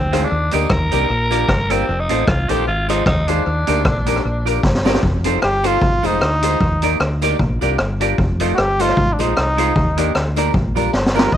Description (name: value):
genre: ska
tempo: 152 BPM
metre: 4/4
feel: swing 56% on 8ths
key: Bb major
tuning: A4 = 440 Hz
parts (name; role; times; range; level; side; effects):
- growling tenor saxophone; melody; 0.0-4.5 s; C4 to Bb4; -21 LUFS; equal; none
- fingered electric bass; bass; 0.0-11.4 s; F1 to Eb2; -21 LUFS; equal; none
- clean electric guitar; accompaniment; 0.1-11.3 s; G3 to D5; -23 LUFS; right 13 dB; phaser, tape echo
- warm upright piano; stabs; 0.1-11.3 s; C4 to Eb5; -24 LUFS; left 14 dB; none
- street-band drum kit; drums; 0.1-11.4 s; hi-hat, kick drum, rim click, snare drum; -19 LUFS; equal; none
- tambourine; percussion; 0.1-11.2 s; none; -40 LUFS; left 11 dB; none
- warm trumpet; melody; 5.4-11.4 s; D4 to Eb5; -19 LUFS; equal; none
room: light reverb, small room ambience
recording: 1960s-style stereo with parts hard left and right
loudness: -15 LUFS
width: side -10 dB against mid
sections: 0.0-5.0 A section; 5.0-11.4 B section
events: drum fill 4.6-5.0, 10.9-11.3; trumpet solo 5.0-11.4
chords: 0.3 Ebmaj7; 1.1 Bb6; 1.9 F7; 2.7 Ab6; 3.5 Ebmaj7; 4.2 Bb6; 5.0 F7; 5.8 Ab6; 6.6 Ebmaj7; 7.4 Bb6; 8.2 F7; 9.0 Ab6; 9.8 Ebmaj7; 10.5 Bb6